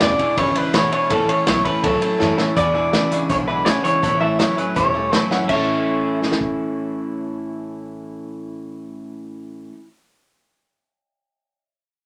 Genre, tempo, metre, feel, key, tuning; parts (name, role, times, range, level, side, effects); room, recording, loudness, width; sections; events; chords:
rockabilly; 164 BPM; 4/4; straight; A major; A4 = 439 Hz
electric guitar through a small old amp; melody; 0.0-9.7 s; A4 to E5; -22 LUFS; equal
picked steel-string acoustic guitar; accompaniment; 0.0-9.9 s; E2 to E4; -29 LUFS; equal
warm upright piano; accompaniment; 0.0-9.7 s; B4 to B5; -31 LUFS; equal
electric guitar at the edge of break-up; riff; 0.0-9.8 s; E2 to C#5; -27 LUFS; equal
upright bass; bass; 0.0-9.7 s; E1 to F#2; -32 LUFS; equal
vintage drum kit; drums; 0.0-6.5 s; crash cymbal, hi-hat, kick drum, ride cymbal, snare drum; -25 LUFS; equal
moderate studio reverb, RT60 0.5 s; -19 LUFS; mono
0.0-2.6 A section; 2.6-5.5 B section; 5.5-8.4 C section
drum fill 2.2-2.6, 5.3
0.0 E7; 1.1 A; 2.6 E7; 4.0 A